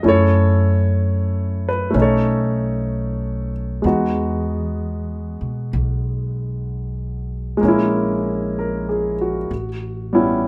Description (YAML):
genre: jazz ballad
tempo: 64 BPM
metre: 4/4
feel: swing 66% on 8ths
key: unclear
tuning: A4 = 440 Hz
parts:
  - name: warm baby grand piano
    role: accompaniment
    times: 0.0-10.5 s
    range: G3 to Eb5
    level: -22 LUFS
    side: equal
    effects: none
  - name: upright bass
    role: bass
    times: 0.0-10.5 s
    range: A1 to B2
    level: -24 LUFS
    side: equal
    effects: none
room: light reverb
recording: none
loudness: -20 LUFS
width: mono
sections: 0.0-10.5 A section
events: none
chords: 0.1 Gbm7; 1.9 B9; 3.8 Emaj9; 7.6 Bbm7b5; 9.5 A9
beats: | 0.05 1.00 1.95 2.89 | 3.83 4.78 5.72 6.66 | 7.60 8.54 9.49 10.44